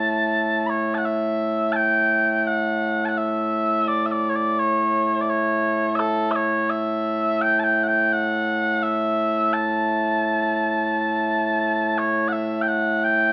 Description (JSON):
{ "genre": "scottish traditional, Scottish pipe music", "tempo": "85 BPM", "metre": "4/4", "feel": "straight", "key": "A mixolydian", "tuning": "A4 = 440 Hz", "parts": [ { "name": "mellow small bagpipes", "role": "solo", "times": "0.0-13.3 s", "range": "A2 to B5", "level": "-22 LUFS", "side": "equal", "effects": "none" } ], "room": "moderate stone room reverb, RT60 1.1 s", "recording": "band playing live in one room", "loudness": "-22 LUFS", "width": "mono", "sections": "0.0-1.0 A section; 1.0-12.3 B section", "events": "none", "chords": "none" }